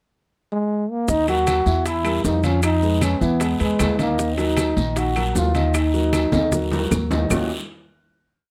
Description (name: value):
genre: Afro-Cuban jazz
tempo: 154 BPM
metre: 4/4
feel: straight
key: Eb minor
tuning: A4 = 442 Hz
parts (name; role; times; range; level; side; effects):
- mellow trombone; melody; 0.5-6.9 s; G#3 to Gb4; -24 LUFS; equal; none
- warm upright piano; accompaniment; 1.1-7.5 s; Eb3 to F5; -27 LUFS; equal; none
- upright bass; bass; 1.1-7.5 s; Bb1 to F2; -25 LUFS; equal; none
- bongos; percussion; 1.1-7.4 s; none; -32 LUFS; equal; none
- congas; percussion; 1.1-7.4 s; none; -31 LUFS; equal; none
- guiro; percussion; 1.1-7.4 s; none; -38 LUFS; equal; none
- maracas; percussion; 1.1-7.4 s; none; -37 LUFS; equal; none
- timbales; percussion; 1.3-7.4 s; none; -32 LUFS; equal; none
- claves; percussion; 1.5-7.4 s; none; -34 LUFS; equal; none
room: little or no reverb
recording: close, detailed microphones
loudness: -20 LUFS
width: mono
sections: 0.0-1.1 pickup bar; 1.1-7.3 A section; 7.3-8.5 final chord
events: drum fill 6.3-7.3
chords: 0.0 N.C.; 1.1 Ebm; 1.9 Edim; 2.6 Fm7b5; 3.4 E; 4.2 Ebm; 7.3 Ebm9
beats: 0.31 0.70 | 1.08 1.47 1.86 2.25 | 2.63 3.02 3.41 3.80 | 4.18 4.57 4.96 5.35 | 5.74 6.13 6.52 6.91 | 7.30